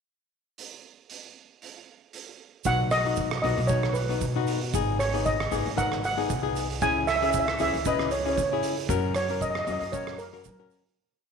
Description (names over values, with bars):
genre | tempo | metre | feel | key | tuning
calypso | 115 BPM | 4/4 | swing 53% on 16ths | B major | A4 = 440 Hz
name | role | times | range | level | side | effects
oversized low-tuned drum kit | drums | 0.6-11.0 s | hi-hat, kick drum, rim click | -33 LUFS | right 6 dB | none
tube shaker | percussion | 2.6-10.8 s | none | -42 LUFS | right 16 dB | none
steel pan | melody | 2.7-10.7 s | A#4 to G#5 | -27 LUFS | right 2 dB | none
flamenco guitar | accompaniment | 2.7-10.8 s | B3 to B4 | -30 LUFS | left 9 dB | none
upright bass | bass | 2.7-10.9 s | G#1 to F#3 | -31 LUFS | equal | none
room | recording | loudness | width
moderate echo chamber reverb, RT60 1.7 s | 1960s-style stereo with parts hard left and right | -24 LUFS | side -6 dB against mid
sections
0.6-2.7 pickup bar; 2.7-11.0 verse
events
fade-out 8.9-11.0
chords
0.6 N.C.; 2.7 B; 4.7 G#m7; 6.8 C#m; 8.9 F#